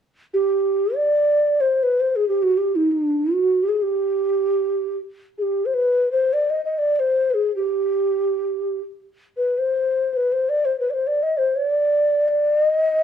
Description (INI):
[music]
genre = indian classical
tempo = free time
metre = none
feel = none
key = G raga bhairav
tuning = A4 = 441 Hz
[part]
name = mellow hollow bansuri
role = melody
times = 0.3-13.0 s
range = D4 to Eb5+21c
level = -18 LUFS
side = equal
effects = none
[sound]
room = moderate studio reverb, RT60 0.9 s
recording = none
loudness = -18 LUFS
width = side -8 dB against mid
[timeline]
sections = 0.1-13.0 A section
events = none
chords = none